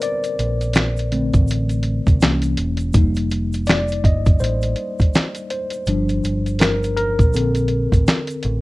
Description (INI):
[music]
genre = lo-fi hip hop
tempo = 82 BPM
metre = 4/4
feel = swing 61% on 16ths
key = Bb major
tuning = A4 = 441 Hz
[part]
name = mellow tine electric piano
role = accompaniment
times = 0.0-8.6 s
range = D3 to Eb5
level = -22 LUFS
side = left 2 dB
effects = medium stereo tremolo, low-pass filter
[part]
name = dusty soul sampler-style drum kit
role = drums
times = 0.0-8.6 s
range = finger snaps, hi-hat, kick drum, snare drum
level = -17 LUFS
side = equal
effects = none
[part]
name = egg shaker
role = percussion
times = 0.0-8.4 s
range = none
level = -44 LUFS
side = right 6 dB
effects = none
[part]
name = deep dub picked electric bass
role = bass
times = 0.4-8.6 s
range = E1 to C2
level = -21 LUFS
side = equal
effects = none
[sound]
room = light reverb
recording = rough home demo mix, cassette tape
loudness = -16 LUFS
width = side -20 dB against mid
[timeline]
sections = 0.0-8.6 A section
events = tine electric piano solo 0.0-8.6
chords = 0.0 Bbmaj9; 2.2 C7b9; 2.9 F9sus4; 5.9 Gm7; 7.3 Bbmaj9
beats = | 0.02 0.75 1.48 2.21 | 2.94 3.67 4.41 5.14 | 5.87 6.60 7.33 8.07